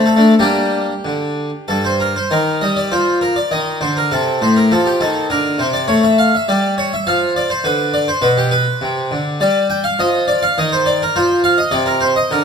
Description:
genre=classical, baroque-style suite movement for harpsichord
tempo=102 BPM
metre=3/4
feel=rubato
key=unclear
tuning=A4 = 440 Hz
part: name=harpsichord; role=solo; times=0.0-12.4 s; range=G2 to G5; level=-13 LUFS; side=equal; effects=none
room=wet recital hall reverb, RT60 1.6 s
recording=none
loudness=-13 LUFS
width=side -6 dB against mid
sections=0.0-2.3 A section; 2.3-12.4 A section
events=none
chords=0.4 Gm; 2.3 Eb; 3.5 Cm9; 4.1 Adim; 5.3 Bbadd9; 5.9 A7b13; 7.1 N.C.; 7.6 Bm; 8.8 Csus2; 9.4 Ebmaj9; 10.6 N.C.; 11.2 F5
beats=| 0.41 1.06 1.69 | 2.31 2.92 3.51 | 4.11 4.71 5.29 | 5.88 6.47 7.06 | 7.65 8.23 8.82 | 9.41 9.99 10.58 | 11.15 11.72 12.30

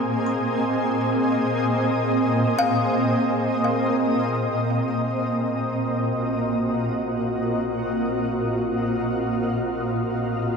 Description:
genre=ambient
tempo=free time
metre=none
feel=none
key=unclear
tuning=A4 = 439 Hz
part: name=shimmering ambient pad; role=sustained chords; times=0.0-10.6 s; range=Bb2 to Eb5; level=-21 LUFS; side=equal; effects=chorus, built-in reverb
part: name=kalimba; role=arpeggios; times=0.0-5.2 s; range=F5 to C6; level=-31 LUFS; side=left 4 dB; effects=ping-pong delay
part: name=deep rumbling drone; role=bass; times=6.2-10.6 s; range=Bb1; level=-46 LUFS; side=equal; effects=none
room=wet cathedral reverb, RT60 5.5 s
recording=none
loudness=-21 LUFS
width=side -5 dB against mid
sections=0.0-4.7 A section; 4.7-10.6 B section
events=none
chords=0.0 Fm7/Bb; 4.7 Ab13/Bb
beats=free time

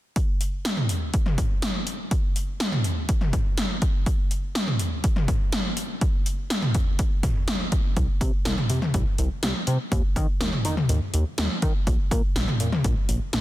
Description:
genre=synth-pop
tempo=123 BPM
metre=4/4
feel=straight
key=C minor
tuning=A4 = 438 Hz
part: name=80s electronic pad drums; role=drums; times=0.2-13.4 s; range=hi-hat, kick drum, snare drum, toms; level=-22 LUFS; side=equal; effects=gated reverb on snare and toms, overdrive
part: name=chorused synth bass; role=bass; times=8.0-13.4 s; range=Bb1 to Eb3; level=-25 LUFS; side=equal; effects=none
room=light reverb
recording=dense, heavily limited modern master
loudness=-22 LUFS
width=side -15 dB against mid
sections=0.2-8.0 A section; 8.0-13.4 B section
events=none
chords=none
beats=| 0.16 0.65 1.14 1.62 | 2.11 2.60 3.09 3.58 | 4.06 4.55 5.04 5.53 | 6.01 6.50 6.99 7.48 | 7.97 8.45 8.94 9.43 | 9.92 10.40 10.89 11.38 | 11.87 12.36 12.84 13.33

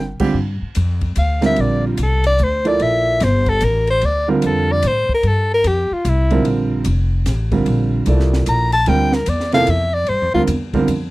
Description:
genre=modal jazz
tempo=148 BPM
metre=3/4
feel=swing 64% on 8ths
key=G dorian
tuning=A4 = 439 Hz
part: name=breathy soprano saxophone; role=melody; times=0.0-6.5, 8.5-10.4 s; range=E4 to Bb5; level=-18 LUFS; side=left 1 dB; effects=none
part: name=upright bass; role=bass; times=0.0-11.1 s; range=F1 to A2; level=-18 LUFS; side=equal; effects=none
part: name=warm grand piano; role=accompaniment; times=0.2-10.9 s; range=C3 to D5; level=-18 LUFS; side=right 4 dB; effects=none
part: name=compact cocktail drum kit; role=drums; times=0.2-11.0 s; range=crash cymbal, hi-hat, kick drum, ride cymbal, snare drum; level=-29 LUFS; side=equal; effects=none
room=little or no reverb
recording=dry, close 1970s-style studio recording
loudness=-14 LUFS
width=side -19 dB against mid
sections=0.4-11.1 A section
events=soprano saxophone solo 0.4-11.1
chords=0.4 Gm11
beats=| 0.36 0.77 1.17 | 1.58 1.99 2.40 | 2.81 3.21 3.62 | 4.03 4.43 4.84 | 5.24 5.65 6.05 | 6.45 6.86 7.26 | 7.66 8.07 8.47 | 8.87 9.28 9.68 | 10.08 10.48 10.89

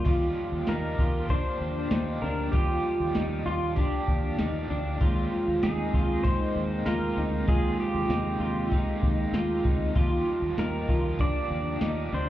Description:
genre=dream pop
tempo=97 BPM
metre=4/4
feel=straight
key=Eb major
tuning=A4 = 439 Hz
part: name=overdriven electric guitar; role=accompaniment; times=0.0-12.3 s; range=C3 to Bb4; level=-36 LUFS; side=right 5 dB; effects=tremolo, analog chorus
part: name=tonewheel organ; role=sustained chords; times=0.0-12.3 s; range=Ab3 to D6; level=-36 LUFS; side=right 1 dB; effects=overdrive, slow rotary speaker
part: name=electric guitar at the edge of break-up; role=arpeggios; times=0.0-12.3 s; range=D4 to F4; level=-31 LUFS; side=equal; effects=ensemble chorus, digital delay
part: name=fingered electric bass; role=bass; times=0.0-12.3 s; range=D2 to Eb2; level=-30 LUFS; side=equal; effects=none
part: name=soft vintage rhythm box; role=drums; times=0.1-12.0 s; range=crash cymbal, hi-hat, kick drum, snare drum, tambourine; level=-27 LUFS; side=equal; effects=none
part: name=pedal steel guitar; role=melody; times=0.7-12.3 s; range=F4 to D5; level=-33 LUFS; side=equal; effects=digital delay
room=light reverb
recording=heard muffled through a wall, club reverb, EQ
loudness=-24 LUFS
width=side -13 dB against mid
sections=0.1-12.3 A section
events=none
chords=0.0 Ebmaj9; 5.0 Abmaj9; 10.0 Ebmaj9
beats=| 0.06 0.68 1.30 1.92 | 2.53 3.15 3.77 4.39 | 5.01 5.63 6.25 6.86 | 7.48 8.10 8.72 9.34 | 9.96 10.57 11.19 11.81

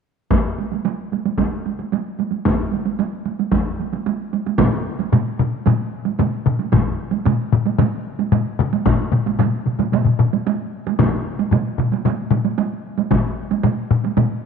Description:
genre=japanese traditional, taiko drum ensemble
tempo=112 BPM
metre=4/4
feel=straight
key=none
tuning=none
part: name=taiko ensemble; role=percussion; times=0.3-14.3 s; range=none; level=-22 LUFS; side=right 9 dB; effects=none
part: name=taiko ensemble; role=percussion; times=0.3-13.2 s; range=none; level=-22 LUFS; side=left 3 dB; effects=none
part: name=taiko ensemble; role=percussion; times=4.6-14.3 s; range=none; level=-20 LUFS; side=left 8 dB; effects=none
part: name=taiko ensemble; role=percussion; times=4.6-14.3 s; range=none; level=-23 LUFS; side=right 4 dB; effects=none
room=moderate plate reverb, RT60 2.7 s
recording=1960s-style stereo with parts hard left and right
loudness=-17 LUFS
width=side -6 dB against mid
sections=0.3-4.6 A section; 4.6-14.5 B section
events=none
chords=none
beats=| 0.31 0.84 1.38 1.92 | 2.45 2.99 3.52 4.06 | 4.59 5.13 5.66 6.20 | 6.73 7.26 7.80 8.33 | 8.86 9.39 9.93 10.46 | 10.99 11.52 12.05 12.58 | 13.11 13.64 14.17

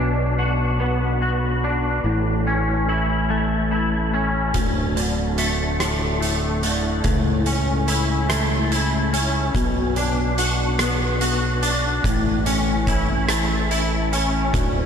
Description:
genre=post-rock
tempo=48 BPM (dotted quarters)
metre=6/8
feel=straight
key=unclear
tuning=A4 = 437 Hz
part: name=twangy electric guitar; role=arpeggios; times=0.0-14.9 s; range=D2 to F#4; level=-22 LUFS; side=left 1 dB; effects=ensemble chorus, tape echo
part: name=growling fingered electric bass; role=bass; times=0.0-14.9 s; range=D1 to C#2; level=-23 LUFS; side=equal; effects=overdrive
part: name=oversized low-tuned drum kit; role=drums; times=4.5-14.7 s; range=hi-hat, kick drum, rim click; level=-25 LUFS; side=right 1 dB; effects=none
room=moderate huge ambient reverb, RT60 4.2 s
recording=dreamy mix soaked in reverb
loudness=-18 LUFS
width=side -7 dB against mid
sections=0.0-14.9 A section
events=none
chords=0.0 Bm; 2.1 A; 4.6 D5; 7.1 A/C#; 9.5 Bm; 12.0 A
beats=0.80 | 2.05 3.30 | 4.55 5.80 | 7.05 8.30 | 9.55 10.80 | 12.04 13.29 | 14.54

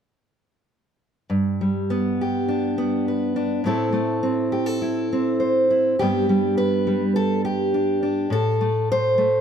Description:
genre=folk, solo fingerstyle acoustic guitar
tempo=103 BPM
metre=4/4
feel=straight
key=G major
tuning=A4 = 440 Hz
part: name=fingerpicked steel-string acoustic guitar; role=solo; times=1.3-9.4 s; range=G2 to C5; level=-19 LUFS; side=equal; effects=none
room=light reverb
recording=close, detailed microphones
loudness=-19 LUFS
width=side -8 dB against mid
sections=1.3-6.0 A section; 6.0-9.4 B section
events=none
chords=1.3 G; 3.6 Am; 6.0 G; 8.3 Am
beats=| 1.30 1.89 2.48 3.06 | 3.64 4.22 4.80 5.38 | 5.98 6.57 7.16 7.74 | 8.32 8.90

